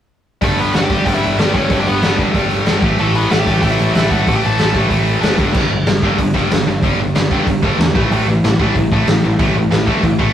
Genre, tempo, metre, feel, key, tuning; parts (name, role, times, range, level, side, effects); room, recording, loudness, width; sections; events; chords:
punk rock; 187 BPM; 4/4; straight; A4 = 438 Hz
nasal lead guitar with a parked wah; melody; 0.4-4.8 s; A3 to A5; -20 LUFS; left 1 dB; overdrive
tight distorted guitar; riff; 0.4-10.3 s; G2 to A3; -17 LUFS; equal; distortion
overdriven picked electric bass; bass; 0.4-10.3 s; F#1 to E2; -19 LUFS; equal
raw garage drum kit; drums; 0.4-10.3 s; crash cymbal, hi-hat, kick drum, snare drum; -16 LUFS; equal
light reverb; rough rehearsal-room recording; -12 LUFS; side -10 dB against mid
0.4-5.5 A section; 5.5-10.3 B section
0.4 G; 2.8 A5; 5.4 G5; 8.0 A5